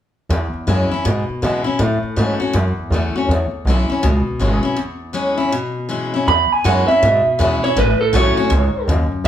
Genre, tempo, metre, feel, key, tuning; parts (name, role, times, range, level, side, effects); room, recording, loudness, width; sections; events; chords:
rockabilly; 161 BPM; 4/4; swing 64% on 8ths; E major; A4 = 440 Hz
picked steel-string acoustic guitar; accompaniment; 0.3-9.3 s; E2 to F#4; -20 LUFS; left 3 dB
upright bass; bass; 0.3-9.3 s; G#1 to B2; -18 LUFS; equal
electric guitar through a small old amp; melody; 6.3-8.9 s; A4 to B5; -16 LUFS; right 3 dB
moderate large studio reverb, RT60 0.9 s; band playing live in one room; -15 LUFS; side -10 dB against mid
0.3-6.3 A section; 6.3-9.3 B section
break 4.8-6.3
0.3 E6; 1.8 A6; 3.3 E6; 7.8 A6